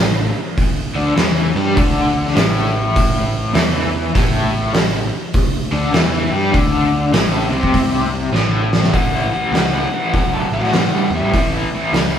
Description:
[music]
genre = blues rock power trio and southern rock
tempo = 100 BPM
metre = 4/4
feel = swing 65% on 8ths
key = unclear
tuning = A4 = 438 Hz
[part]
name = raw garage guitar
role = riff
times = 0.0-12.2 s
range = A2 to G3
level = -18 LUFS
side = left 1 dB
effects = overdrive, tremolo
[part]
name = fuzz picked electric bass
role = bass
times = 0.0-12.2 s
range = A1 to A2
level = -22 LUFS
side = equal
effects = overdrive
[part]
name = oversized low-tuned drum kit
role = drums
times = 0.6-12.1 s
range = hi-hat, kick drum, snare drum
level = -17 LUFS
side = equal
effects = none
[part]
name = lead guitar through a small cranked amp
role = second line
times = 8.9-11.5 s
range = E5 to A5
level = -23 LUFS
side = left 3 dB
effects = overdrive
[sound]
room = moderate studio reverb, RT60 0.7 s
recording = band playing live in one room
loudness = -14 LUFS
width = side -9 dB against mid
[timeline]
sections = 0.0-8.9 A section; 8.9-12.2 B section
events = drum fill 8.3-8.9; lead electric guitar solo 8.9-12.2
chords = 0.0 A5; 8.9 A

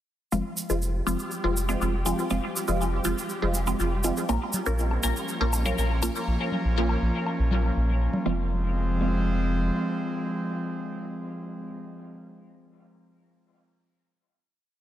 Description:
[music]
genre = dub techno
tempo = 121 BPM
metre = 4/4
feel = straight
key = F minor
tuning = A4 = 436 Hz
[part]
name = filtered dub chord stab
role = stabs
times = 0.3-11.8 s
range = F3 to Bb4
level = -29 LUFS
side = equal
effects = phaser, vintage 12-bit sampler grit, dub echo
[part]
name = soft dub sub bass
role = bass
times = 0.3-9.7 s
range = F1 to Bb1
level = -26 LUFS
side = equal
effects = none
[part]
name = egg shaker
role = percussion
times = 0.3-6.3 s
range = none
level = -34 LUFS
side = right 3 dB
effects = none
[part]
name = flickering grainy texture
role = texture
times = 0.9-6.3 s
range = G3 to G4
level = -39 LUFS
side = equal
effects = built-in reverb
[part]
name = airy breathy pad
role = sustained chords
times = 4.3-11.8 s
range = F3 to Db4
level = -30 LUFS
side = equal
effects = chorus
[part]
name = congas and woodblock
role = percussion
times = 4.5-8.2 s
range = none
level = -34 LUFS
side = left 1 dB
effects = dub echo
[sound]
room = light reverb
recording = dense, heavily limited modern master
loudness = -24 LUFS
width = side -12 dB against mid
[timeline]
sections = 0.3-8.3 groove; 8.3-12.2 final chord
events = filter sweep on synth stab 0.3-6.3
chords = 0.3 Fm; 4.3 Bbm; 8.3 Fm

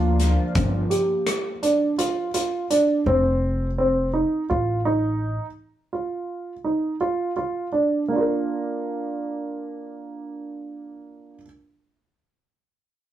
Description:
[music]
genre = progressive instrumental, band music in an uneven meter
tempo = 167 BPM (eighths)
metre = 7/8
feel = straight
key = Bb major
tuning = A4 = 441 Hz
[part]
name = phased analog pad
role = accompaniment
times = 0.0-0.5 s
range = F3 to F4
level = -28 LUFS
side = equal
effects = phaser, chorus
[part]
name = dark grand piano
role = arpeggios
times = 0.0-11.5 s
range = Bb3 to Bb4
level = -23 LUFS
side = right 2 dB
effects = none
[part]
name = upright bass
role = bass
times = 0.0-5.4 s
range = F1 to D2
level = -24 LUFS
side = left 1 dB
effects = none
[part]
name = loose indie drum kit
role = drums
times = 0.2-2.9 s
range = hi-hat, kick drum, rim click, snare drum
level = -27 LUFS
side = left 1 dB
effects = none
[sound]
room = moderate studio reverb, RT60 0.5 s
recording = rough rehearsal-room recording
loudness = -21 LUFS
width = side -12 dB against mid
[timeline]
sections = 0.0-8.1 A section; 8.1-10.6 B section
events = none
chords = 0.0 Bb; 0.6 G5; 3.1 F; 5.6 N.C.; 8.1 Bb

